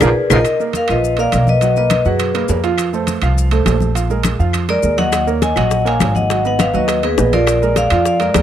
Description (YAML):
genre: latin, salsa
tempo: 205 BPM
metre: 4/4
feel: straight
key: Eb harmonic minor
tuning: A4 = 440 Hz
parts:
  - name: vibraphone with hard mallets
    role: melody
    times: 0.0-2.6, 4.7-8.4 s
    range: Ab4 to Ab5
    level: -17 LUFS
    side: left 3 dB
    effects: none
  - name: warm upright piano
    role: accompaniment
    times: 0.0-8.4 s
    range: F3 to F#5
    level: -20 LUFS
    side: right 8 dB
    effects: none
  - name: upright bass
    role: bass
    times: 0.0-8.4 s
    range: Ab1 to F#2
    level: -18 LUFS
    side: equal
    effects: none
  - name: bongos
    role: percussion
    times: 0.0-0.4, 5.1-8.4 s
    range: none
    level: -21 LUFS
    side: left 8 dB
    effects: none
  - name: claves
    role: percussion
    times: 0.0-8.4 s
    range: none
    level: -25 LUFS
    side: left 15 dB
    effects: none
  - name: congas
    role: percussion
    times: 0.0-8.4 s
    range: none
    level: -22 LUFS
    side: left 2 dB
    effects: none
  - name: maracas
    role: percussion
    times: 0.0-8.4 s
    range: none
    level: -31 LUFS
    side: left 18 dB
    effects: none
  - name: timbales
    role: percussion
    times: 0.0-8.4 s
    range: none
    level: -24 LUFS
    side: right 8 dB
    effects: none
room: light reverb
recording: dry, close 1970s-style studio recording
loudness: -13 LUFS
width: side -10 dB against mid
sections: 0.4-8.4 A section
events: drum fill 0.0-0.4; band accent 0.0-0.4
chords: 0.4 Ebsus2; 1.6 Bmaj7; 2.8 F; 4.0 Bb7; 5.1 Ebm7; 6.3 Abm7; 7.5 Bb7